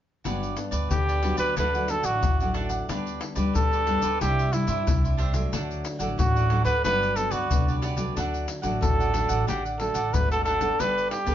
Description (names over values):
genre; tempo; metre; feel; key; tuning
samba and choro; 91 BPM; 4/4; straight; G major; A4 = 440 Hz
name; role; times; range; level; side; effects
cavaquinho; accompaniment; 0.2-11.3 s; D4 to F#5; -33 LUFS; right 3 dB; none
nylon-string guitar; accompaniment; 0.3-11.3 s; G2 to A4; -31 LUFS; left 2 dB; none
upright bass; bass; 0.3-11.3 s; G1 to G2; -28 LUFS; right 1 dB; none
tube shaker, surdo and pandeiro; percussion; 0.3-11.3 s; none; -28 LUFS; left 2 dB; none
clear trumpet; melody; 0.9-11.3 s; E4 to B4; -25 LUFS; right 1 dB; none
room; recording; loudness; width
moderate studio reverb, RT60 0.5 s; band playing live in one room, nothing above 7.5 kHz; -22 LUFS; side -11 dB against mid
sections
0.3-11.3 A section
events
none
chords
0.3 Gmaj7; 1.6 D; 2.9 G/D; 4.2 Cadd9; 5.5 D; 6.8 Gmaj7; 8.2 D; 10.8 Gadd9